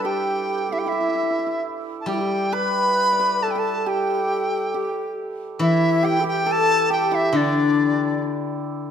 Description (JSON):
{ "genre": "chinese traditional, Chinese chamber ensemble", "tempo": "67 BPM", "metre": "2/4", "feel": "rubato", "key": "unclear", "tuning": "A4 = 440 Hz", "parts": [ { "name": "bright reedy large dizi", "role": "melody", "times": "0.0-8.2 s", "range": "D5 to B5", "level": "-23 LUFS", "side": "right 1 dB", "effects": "none" }, { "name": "breathy bright xiao", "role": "second line", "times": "0.0-8.2 s", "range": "D4 to B4", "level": "-25 LUFS", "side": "left 5 dB", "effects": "none" }, { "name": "hammered dulcimer", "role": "second line", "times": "0.0-8.9 s", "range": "D4 to D5", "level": "-26 LUFS", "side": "right 6 dB", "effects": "none" }, { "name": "steel-string zither", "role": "accompaniment", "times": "0.0-8.9 s", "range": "D3 to G3", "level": "-25 LUFS", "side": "left 3 dB", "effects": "none" } ], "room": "moderate scoring stage reverb, RT60 1.8 s", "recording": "none", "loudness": "-19 LUFS", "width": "side -8 dB against mid", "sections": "0.0-8.9 A section", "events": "none", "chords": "none" }